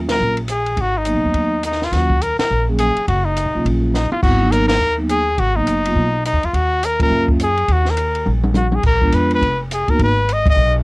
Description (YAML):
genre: jazz, small-group swing and bop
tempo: 208 BPM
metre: 4/4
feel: swing 61% on 8ths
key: Eb minor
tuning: A4 = 438 Hz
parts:
  - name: vibraphone with soft mallets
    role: accompaniment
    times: 0.0-10.0 s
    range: Gb3 to Ab4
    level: -20 LUFS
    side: right 1 dB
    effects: cassette tape
  - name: upright bass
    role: bass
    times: 0.0-10.8 s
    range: F1 to Gb2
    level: -20 LUFS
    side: equal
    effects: none
  - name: clear trumpet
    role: melody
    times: 0.1-10.7 s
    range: Eb4 to Eb5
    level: -18 LUFS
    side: left 1 dB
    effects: cassette tape
  - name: compact cocktail drum kit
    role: drums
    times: 0.1-10.5 s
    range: crash cymbal, hi-hat, kick drum, ride cymbal, snare drum, toms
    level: -22 LUFS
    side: equal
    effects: cassette tape
room: light reverb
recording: home recording on cassette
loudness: -14 LUFS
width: side -24 dB against mid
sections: 0.0-10.8 A section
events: band accent 0.1, 2.4, 4.7, 7.0, 10.4; drum fill 3.9, 8.3-8.8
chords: 0.0 Ebm7; 0.8 Abm7; 1.9 Ebm7; 4.2 Abm7; 6.5 Ebm7; 8.8 Bb7b9; 10.0 Abm